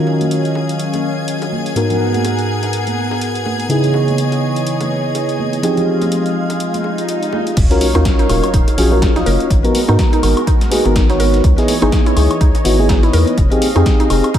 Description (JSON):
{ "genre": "deep house", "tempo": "124 BPM", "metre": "4/4", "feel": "swing 58% on 16ths", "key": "unclear", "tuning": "A4 = 440 Hz", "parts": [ { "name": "warm analog pad", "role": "sustained chords", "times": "0.0-14.4 s", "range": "Fb3 to Gb5", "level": "-22 LUFS", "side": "equal", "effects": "wide subtle chorus, sidechain pumping" }, { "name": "mellow FM electric piano", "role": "stabs", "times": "0.0-14.3 s", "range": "Ab2 to Eb5", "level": "-16 LUFS", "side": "equal", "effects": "chorus, sidechain pumping, analog delay" }, { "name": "rich chamber violin section", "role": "texture", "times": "0.0-7.6 s", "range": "Ab4 to Ab6", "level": "-26 LUFS", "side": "left 3 dB", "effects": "sidechain pumping" }, { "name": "bongos and congas", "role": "percussion", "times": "0.1-14.3 s", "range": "none", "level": "-29 LUFS", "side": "right 4 dB", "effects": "none" }, { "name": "punchy analog drum machine", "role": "drums", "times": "0.2-14.4 s", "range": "crash cymbal, hi-hat, snare drum, woodblock", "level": "-25 LUFS", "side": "left 1 dB", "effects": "none" }, { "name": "swell and sub drop", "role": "sound effects", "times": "6.9-9.5 s", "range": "none", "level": "-23 LUFS", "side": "equal", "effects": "none" }, { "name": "round analog bass", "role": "bass", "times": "7.6-14.2 s", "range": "Eb1 to Ab2", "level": "-15 LUFS", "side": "equal", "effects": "sidechain pumping" }, { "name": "dusty soul sampler-style drum kit", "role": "drums", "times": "7.6-14.4 s", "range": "hi-hat, snare drum", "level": "-34 LUFS", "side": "left 1 dB", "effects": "none" }, { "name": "electronic kick drum", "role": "drums", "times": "7.6-14.4 s", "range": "none", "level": "-14 LUFS", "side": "equal", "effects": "none" }, { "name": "mallet-like synth pluck", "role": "arpeggios", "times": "8.0-14.4 s", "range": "Eb4 to Bb4", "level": "-25 LUFS", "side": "right 2 dB", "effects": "chorus, sidechain pumping, ping-pong delay" } ], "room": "moderate lush hall reverb, RT60 1.5 s", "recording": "dreamy mix soaked in reverb", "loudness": "-12 LUFS", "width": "side -10 dB against mid", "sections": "0.0-7.6 A section; 7.6-14.4 B section", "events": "filter sweep on analog synth pad 0.0-7.6; swell 6.9-7.6; drop 7.6-14.4; impact 7.6-9.5", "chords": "0.0 Ebm9; 1.8 Abm9; 3.7 Dbm9; 5.6 Fm9; 7.6 Ebm9; 9.5 Abm9; 11.4 Dbm9; 13.4 Fm9", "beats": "0.31 0.80 1.28 | 1.76 2.25 2.73 3.21 | 3.70 4.18 4.67 5.15 | 5.63 6.12 6.60 7.08 | 7.57 8.05 8.54 9.02 | 9.51 9.99 10.47 10.96 | 11.44 11.92 12.41 12.89 | 13.38 13.86 14.34" }